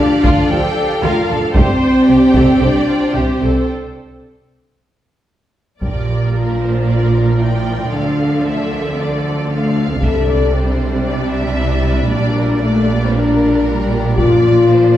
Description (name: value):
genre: cinematic, epic orchestral film score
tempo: 114 BPM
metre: 4/4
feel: straight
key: unclear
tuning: A4 = 439 Hz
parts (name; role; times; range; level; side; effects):
- warm symphonic violin section; melody; 0.0-15.0 s; C5 to G5; -28 LUFS; left 2 dB; none
- dark symphonic violin section; second line; 0.0-15.0 s; F4 to G5; -25 LUFS; left 1 dB; none
- rich symphonic viola section; accompaniment; 0.0-15.0 s; F3 to C5; -25 LUFS; right 1 dB; none
- dark symphonic string section; sustained chords; 0.0-3.7 s; F3 to D5; -23 LUFS; equal; none
- mellow French horn section; sustained chords; 0.0-15.0 s; G3 to A4; -16 LUFS; left 2 dB; none
- warm symphonic cello section; bass; 0.0-15.0 s; Bb2 to D3; -21 LUFS; right 3 dB; none
- warm symphonic double bass section; bass; 0.0-15.0 s; Bb1 to D2; -19 LUFS; right 2 dB; none
- taiko ensemble; drums; 0.2-6.8, 10.0-11.0, 14.2-15.0 s; none; -18 LUFS; equal; none
- warm trombone section; sustained chords; 0.5-2.8 s; F3 to D4; -25 LUFS; right 2 dB; none
room: wet recital hall reverb, RT60 1.3 s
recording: heard from further back in the room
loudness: -12 LUFS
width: side -12 dB against mid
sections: 0.0-5.8 A section; 5.8-15.0 B section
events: break 3.7-5.8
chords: 0.0 Dm; 1.6 Csus2; 3.7 N.C.; 5.8 Bb; 7.9 Dm; 10.0 Csus2; 12.1 Gm/Bb; 14.2 Bb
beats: 0.50 1.03 | 1.55 2.08 2.61 3.14 | 3.68 4.21 4.75 5.28 | 5.82 6.34 6.87 7.39 | 7.92 8.45 8.97 9.50 | 10.02 10.54 11.06 11.59 | 12.11 12.63 13.14 13.66 | 14.19 14.70